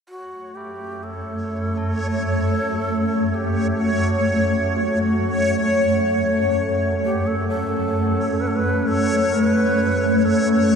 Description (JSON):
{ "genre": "dark ambient drone", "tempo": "65 BPM", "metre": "4/4", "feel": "straight", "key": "F# phrygian", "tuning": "A4 = 440 Hz", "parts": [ { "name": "breathy bright long shakuhachi", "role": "melody", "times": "0.1-10.8 s", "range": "F#4 to B4", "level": "-28 LUFS", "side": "equal", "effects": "tape echo" }, { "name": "deep dark ambient pad", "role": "sustained chords", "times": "2.9-10.8 s", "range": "A3 to F#5", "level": "-29 LUFS", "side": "right 2 dB", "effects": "chorus, built-in reverb" }, { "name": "swarming drone", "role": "drone", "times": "1.0-10.8 s", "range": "F#2 to A3", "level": "-21 LUFS", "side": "equal", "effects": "built-in reverb" }, { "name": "backwards swelling texture", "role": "texture", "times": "0.1-10.8 s", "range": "C#5", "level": "-23 LUFS", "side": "left 1 dB", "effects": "built-in reverb" }, { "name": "tubular bells", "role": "arpeggios", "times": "0.6-10.8 s", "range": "E4 to A4", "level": "-42 LUFS", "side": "left 1 dB", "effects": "none" } ], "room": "wet huge ambient reverb, RT60 8.6 s", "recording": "dark, warm production", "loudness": "-18 LUFS", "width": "side -6 dB against mid", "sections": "0.1-10.8 A section", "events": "fade-in on ambient pad 0.1-10.8; fade-in on shakuhachi 0.1-10.8", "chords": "0.1 F#m", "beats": "| 0.10 1.02 1.95 2.87 | 3.79 4.72 5.64 6.56 | 7.49 8.41 9.33 10.25" }